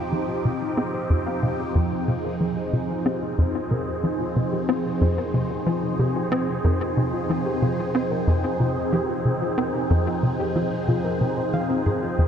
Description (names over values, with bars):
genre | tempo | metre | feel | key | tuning
ambient, sequencer-driven space music | 92 BPM | 4/4 | straight | F minor | A4 = 440 Hz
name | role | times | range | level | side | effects
phased analog pad | sustained chords | 0.0-12.3 s | F3 to Bb4 | -26 LUFS | right 1 dB | phaser, chorus
soft round pluck | arpeggios | 0.0-12.2 s | C4 to F5 | -32 LUFS | moving between left 5 dB and right 1 dB | chorus, auto-pan, ping-pong delay
wind-like tuned noise texture | texture | 0.0-12.3 s | C4 to G5 | -33 LUFS | left 1 dB | built-in reverb
tight sequencer bass | riff | 0.1-12.3 s | F2 to C4 | -24 LUFS | equal | ensemble chorus, vintage 12-bit sampler grit, ping-pong delay
room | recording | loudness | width
wet huge ambient reverb, RT60 8.0 s | in a vast, echoing space | -21 LUFS | side -8 dB against mid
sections
0.0-12.3 A section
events
filter sweep on analog synth bass 0.0-12.3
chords
0.0 Fm7